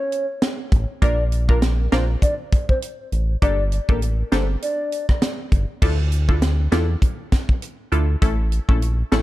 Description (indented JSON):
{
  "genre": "dancehall",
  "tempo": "100 BPM",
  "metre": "4/4",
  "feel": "swing 56% on 16ths",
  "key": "D harmonic minor",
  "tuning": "A4 = 440 Hz",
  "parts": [
    { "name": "hollow clarinet-like synth lead", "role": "melody", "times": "0.0-5.1 s", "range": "Bb4 to D5", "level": "-26 LUFS", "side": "equal", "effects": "chorus, digital delay" },
    { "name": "tight funk drum kit", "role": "drums", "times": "0.1-9.2 s", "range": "crash cymbal, hi-hat, kick drum, rim click, snare drum", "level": "-20 LUFS", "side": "equal", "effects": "none" },
    { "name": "round analog bass", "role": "bass", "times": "0.7-9.2 s", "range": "G1 to E2", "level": "-20 LUFS", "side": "equal", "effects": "none" },
    { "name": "wavetable chord stab", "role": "accompaniment", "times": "1.0-9.2 s", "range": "A3 to Bb4", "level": "-26 LUFS", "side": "left 1 dB", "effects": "none" }
  ],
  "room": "small room ambience",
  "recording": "dark, warm production",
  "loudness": "-18 LUFS",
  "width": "side -16 dB against mid",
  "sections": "0.0-5.8 A section; 5.8-9.2 B section",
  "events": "none",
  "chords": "0.0 A; 1.0 Bb; 3.4 Gmadd9; 5.8 Dmadd9; 8.2 A"
}